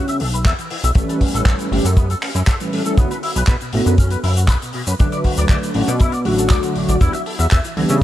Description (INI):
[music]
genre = nu-disco, nu disco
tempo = 119 BPM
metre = 4/4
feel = straight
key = B minor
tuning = A4 = 440 Hz
[part]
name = electric guitar with an envelope filter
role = riff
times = 0.0-8.0 s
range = A2 to E5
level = -25 LUFS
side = left 2 dB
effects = ensemble chorus, dub echo
[part]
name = chorused synth bass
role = bass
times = 0.0-8.0 s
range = G1 to C#3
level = -18 LUFS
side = equal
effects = sidechain pumping
[part]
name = damped 70s drum kit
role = drums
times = 0.1-8.0 s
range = finger snaps, handclaps, hi-hat, shaker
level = -26 LUFS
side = left 1 dB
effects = none
[part]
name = kick drum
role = drums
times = 0.5-7.6 s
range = none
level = -15 LUFS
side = equal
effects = none
[part]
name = mellow synth brass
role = accompaniment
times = 0.9-8.0 s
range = D3 to B4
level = -21 LUFS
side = equal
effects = chorus, sidechain pumping, dub echo
[sound]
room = light reverb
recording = echo-heavy mix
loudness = -15 LUFS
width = side -13 dB against mid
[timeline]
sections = 0.0-8.0 A section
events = none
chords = 0.0 E5; 1.0 A7; 3.0 Bm7; 7.0 Em7